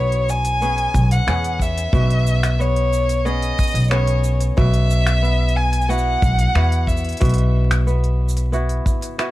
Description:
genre	folktronica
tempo	91 BPM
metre	4/4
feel	straight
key	unclear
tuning	A4 = 440 Hz
part	rich violin	melody	0.0-7.5 s	C#5 to G#5	-22 LUFS	left 1 dB	ping-pong delay
part	kora	arpeggios	0.0-9.3 s	B2 to G#4	-26 LUFS	equal	none
part	upright bass	bass	0.0-8.8 s	B1 to E2	-18 LUFS	equal	none
part	organic electronic drum kit	drums	0.1-9.3 s	finger snaps, hi-hat, shaker	-28 LUFS	equal	none
part	kick drum	drums	0.9-9.0 s	none	-20 LUFS	equal	none
room	little or no reverb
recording	dark, warm production, vinyl crackle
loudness	-16 LUFS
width	side -16 dB against mid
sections	0.0-9.3 A section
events	none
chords	0.0 C#m/B

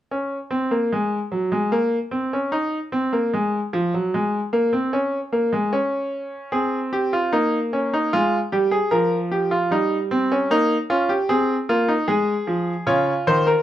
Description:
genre	classical, baroque-style 4-part fugue for grand piano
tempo	75 BPM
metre	4/4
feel	straight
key	unclear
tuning	A4 = 439 Hz
part	bright concert grand piano	solo	0.1-13.6 s	Db3 to Db5	-19 LUFS	equal	none
room	light reverb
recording	dark, warm production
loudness	-19 LUFS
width	side -12 dB against mid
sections	0.1-13.6 A section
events	none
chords	0.1 N.C.; 6.5 Ab/C; 8.1 Bb5; 9.7 Eb7/G; 11.3 Ab; 12.9 Db

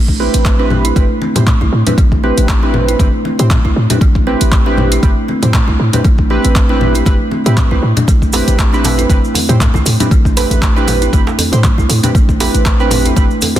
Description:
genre	afro house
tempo	118 BPM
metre	4/4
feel	swing 55% on 16ths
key	A minor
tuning	A4 = 440 Hz
part	kalimba	arpeggios	0.0-13.5 s	A3 to E4	-18 LUFS	equal	sidechain pumping, digital delay
part	warm 808-style bass	bass	0.0-13.6 s	G1 to A2	-15 LUFS	equal	sidechain pumping
part	electronic kick drum	drums	0.1-13.3 s	none	-12 LUFS	equal	studio reverb
part	congas	percussion	0.1-13.6 s	none	-20 LUFS	left 3 dB	none
part	warm analog keys	stabs	0.2-13.6 s	C4 to C5	-18 LUFS	right 4 dB	chorus, vintage 12-bit sampler grit, sidechain pumping, digital delay
part	deep house drum kit	drums	0.3-13.6 s	handclaps, hi-hat	-20 LUFS	right 1 dB	overdrive, studio reverb
part	cabasa	percussion	8.1-13.6 s	none	-27 LUFS	right 3 dB	none
part	djembe	percussion	8.3-13.5 s	none	-23 LUFS	right 3 dB	none
room	light reverb, small room reverb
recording	dense, heavily limited modern master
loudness	-10 LUFS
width	side -12 dB against mid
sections	0.0-13.6 A section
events	none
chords	0.0 Am7

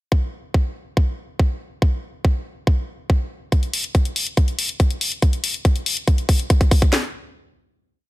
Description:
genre	trance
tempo	141 BPM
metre	4/4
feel	straight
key	none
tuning	none
part	garage drum kit	drums	0.1-7.0 s	handclaps, kick drum, snare drum	-16 LUFS	equal	studio reverb
part	electronic hi-hat	drums	3.5-6.9 s	none	-24 LUFS	left 3 dB	high-pass filter on hats, studio reverb
room	little or no reverb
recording	dense, heavily limited modern master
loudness	-18 LUFS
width	side -18 dB against mid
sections	0.1-3.5 intro; 3.5-6.9 build; 6.9-8.1 final hit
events	build-up 3.5-6.9; drum fill 5.2-6.9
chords	none

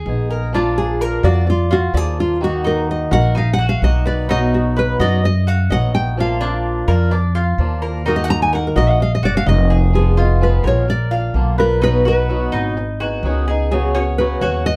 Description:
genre	latin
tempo	128 BPM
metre	4/4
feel	straight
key	Eb harmonic minor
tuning	A4 = 439 Hz
part	Cuban tres	arpeggios	0.0-14.8 s	Db4 to F5	-27 LUFS	equal	none
part	upright bass	bass	0.0-14.8 s	F1 to Gb2	-20 LUFS	equal	none
part	fingerpicked swing-style acoustic guitar	accompaniment	0.1-14.7 s	Cb3 to Ab4	-25 LUFS	equal	none
part	nylon-string guitar	melody	0.6-14.8 s	F4 to Bb5	-22 LUFS	equal	none
room	moderate studio reverb, RT60 0.5 s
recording	heard from further back in the room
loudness	-17 LUFS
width	mono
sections	0.0-9.9 A section; 9.9-14.8 B section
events	nylon-string guitar solo 0.0-9.9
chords	0.0 Abm; 0.5 Bb; 2.4 Ebm; 6.2 Bb; 8.1 Ebm; 9.9 Fdim; 10.9 Bb; 11.8 B; 12.8 Abm7; 13.7 Db7sus4

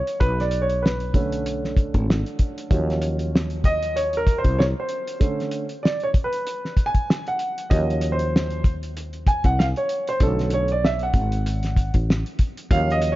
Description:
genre	hip hop, jazz-hop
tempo	96 BPM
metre	4/4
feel	swing 57% on 16ths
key	unclear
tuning	A4 = 440 Hz
part	warm upright piano	accompaniment	0.0-13.2 s	D3 to Ab5	-24 LUFS	right 1 dB	none
part	cloth-damped thuddy drum kit	drums	0.1-13.2 s	hi-hat, kick drum, snare drum	-21 LUFS	equal	none
part	woody fretless electric bass	bass	0.2-13.2 s	Ab1 to Eb2	-24 LUFS	equal	none
room	small room reverb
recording	dark, warm production, nothing above 7.5 kHz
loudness	-20 LUFS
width	side -16 dB against mid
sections	0.0-13.2 A section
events	upright piano solo 0.0-13.2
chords	0.2 Bm9; 2.7 Ebm9; 5.2 Bm9; 7.7 Ebm9; 10.2 Bm9

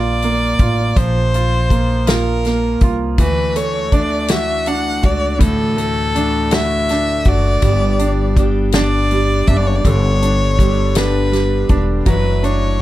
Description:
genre	six-eight pop ballad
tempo	54 BPM (dotted quarters)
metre	6/8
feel	straight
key	D major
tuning	A4 = 440 Hz
part	clear violin	melody	0.0-12.8 s	A4 to F#5	-20 LUFS	left 1 dB	none
part	bright baby grand piano	accompaniment	0.0-12.8 s	A2 to F#4	-20 LUFS	right 4 dB	none
part	upright bass	bass	0.0-12.8 s	E1 to D2	-18 LUFS	equal	none
part	natural country drum kit	drums	0.2-12.6 s	hi-hat, kick drum, snare drum	-16 LUFS	equal	none
part	picked steel-string acoustic guitar	arpeggios	3.2-12.8 s	F#2 to G4	-23 LUFS	left 6 dB	none
room	light reverb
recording	dark, warm production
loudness	-13 LUFS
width	side -15 dB against mid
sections	0.0-12.8 A section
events	none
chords	0.0 Bbadd9; 3.2 Dadd9; 7.6 G; 12.1 Dadd9

